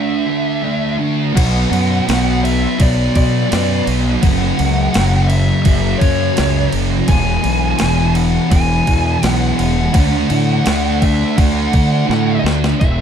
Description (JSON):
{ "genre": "rock, shoegaze and dream pop", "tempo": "84 BPM", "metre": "4/4", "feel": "straight", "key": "unclear", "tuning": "A4 = 440 Hz", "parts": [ { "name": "fuzz lead guitar", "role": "melody", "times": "0.0-13.0 s", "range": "C#5 to G#5", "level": "-22 LUFS", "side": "equal", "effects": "distortion, tape echo" }, { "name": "thick fuzz guitar", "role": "riff", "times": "0.0-13.0 s", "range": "E2 to D4", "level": "-16 LUFS", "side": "equal", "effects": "distortion, analog chorus" }, { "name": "fuzz fingered electric bass", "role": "bass", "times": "1.4-13.0 s", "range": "E1 to D3", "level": "-18 LUFS", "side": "equal", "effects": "overdrive" }, { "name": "crisp 8-bit digital drum machine", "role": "drums", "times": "1.4-13.0 s", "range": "crash cymbal, hi-hat, kick drum, snare drum", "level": "-19 LUFS", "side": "equal", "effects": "none" } ], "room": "little or no reverb", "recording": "dark, warm production", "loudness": "-12 LUFS", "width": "side -8 dB against mid", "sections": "0.0-1.4 A section; 1.4-12.8 B section", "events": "break 0.0-1.4; drum fill 12.1-12.8", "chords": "0.0 Dsus2; 1.4 Bm; 4.2 F#5; 7.1 E; 9.9 D" }